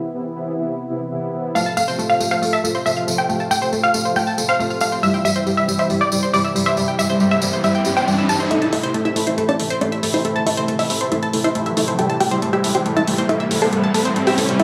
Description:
uplifting trance; 138 BPM; 4/4; straight; A minor; A4 = 440 Hz
filtered supersaw swell; sustained chords; 0.1-14.6 s; C3 to F4; -25 LUFS; equal
unison pluck; melody; 1.6-14.6 s; D4 to A5; -23 LUFS; equal; tape echo
analog pluck; arpeggios; 1.6-14.6 s; G3 to A5; -24 LUFS; equal; chorus, tape echo
tambourine; percussion; 1.6-8.5 s; -29 LUFS; equal
riser; sound effects; 6.5-14.6 s; -28 LUFS; equal
electronic hi-hat; drums; 8.5-14.6 s; -29 LUFS; equal; studio reverb
moderate digital room reverb, RT60 1.0 s, digital ambience; studio ambience; -19 LUFS; mono
0.0-8.5 A section; 8.5-14.6 B section
filter sweep on supersaw synth 0.0-8.5; riser 6.5-8.5, 8.5-14.6; build-up 8.5-14.6; filter sweep on synth pluck 8.5-14.6
0.0 Am (rootless); 1.6 F; 5.0 C; 8.5 Am

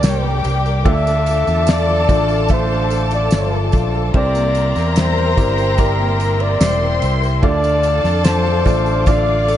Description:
pop ballad; 73 BPM; 4/4; straight; A4 = 440 Hz
mellow flugelhorn; melody; 0.0-9.6 s; Bb4 to E5; -20 LUFS; equal
warm studio violin section; second line; 0.0-9.6 s; F4 to C6; -24 LUFS; left 3 dB
clear upright piano; accompaniment; 0.0-9.6 s; C3 to E5; -24 LUFS; right 2 dB
muted studio string section; sustained chords; 0.0-9.6 s; F4 to D6; -26 LUFS; left 3 dB
fingerpicked steel-string acoustic guitar; arpeggios; 0.0-9.6 s; G2 to Bb4; -26 LUFS; left 5 dB; lush chorus, diffuse ambient delay
fingered electric bass; bass; 0.0-9.6 s; E1 to F2; -18 LUFS; equal
damped 70s drum kit; drums; 0.0-9.6 s; kick drum, ride cymbal, snare drum; -18 LUFS; equal
tambourine; percussion; 0.0-9.6 s; -36 LUFS; right 9 dB
moderate lush hall reverb, RT60 2.7 s; dreamy mix soaked in reverb, nothing above 10.4 kHz; -13 LUFS; side -11 dB against mid
0.0-9.6 A section
0.0 Gm; 0.9 Dm; 4.1 C7; 7.4 Dm

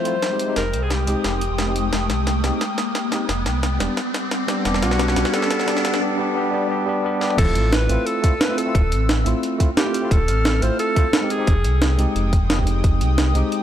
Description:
liquid drum and bass; 176 BPM; 4/4; straight; A4 = 439 Hz
clear alto saxophone; melody; 0.0-1.8, 4.8-12.0 s; F#4 to C5; -26 LUFS; equal; ping-pong delay
tine electric piano; accompaniment; 0.0-13.6 s; G3 to G4; -25 LUFS; equal; auto-pan, low-pass filter, tape echo
airy breathy pad; sustained chords; 0.0-13.6 s; F3 to F6; -28 LUFS; left 1 dB; chorus, sidechain pumping
riser; sound effects; 0.1-6.0 s; -27 LUFS; left 1 dB
breakbeat sampler-style drum kit; drums; 0.1-13.6 s; crash cymbal, hi-hat, snare drum, toms; -24 LUFS; right 1 dB; high-pass filter on hats, studio reverb, high-pass filter on snare, high-pass filter on toms, high-pass filter on cymbals
sub bass with octave; bass; 0.6-5.2, 7.4-13.4 s; D1 to C2; -21 LUFS; equal
electronic kick drum; drums; 7.4-12.9 s; -18 LUFS; equal; studio reverb
light reverb, digital ambience; dark, warm production; -18 LUFS; side -10 dB against mid
0.0-7.4 A section; 7.4-13.6 B section
build-up 0.0-7.4; drum fill 0.0-6.0, 7.2; filter sweep on tine electric piano 0.0-7.4; riser 0.1-6.0; drop 7.4-13.6
0.4 Fm9; 3.8 Em9; 7.4 Dm9; 11.3 Fm9

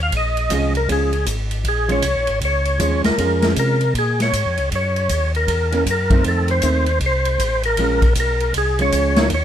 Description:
soul jazz organ trio; 157 BPM; 4/4; swing 64% on 8ths; Bb minor; A4 = 441 Hz
percussive tonewheel organ; melody; 0.0-9.4 s; Ab4 to F5; -20 LUFS; left 1 dB; slow rotary speaker, overdrive, chorus vibrato
mellow tonewheel organ; bass; 0.0-9.4 s; Ab1 to C3; -21 LUFS; equal; slow rotary speaker
swinging big-band drum kit; drums; 0.1-9.4 s; hi-hat, kick drum, ride cymbal, snare drum; -23 LUFS; equal
hollow-body jazz guitar; accompaniment; 0.5-9.3 s; Eb3 to Eb4; -23 LUFS; right 4 dB
light reverb; -16 LUFS; side -10 dB against mid
0.0-9.4 A section
tonewheel organ solo 0.0-9.4
0.1 Bbm7; 4.7 Gb7; 6.2 F7; 7.8 Bbm7

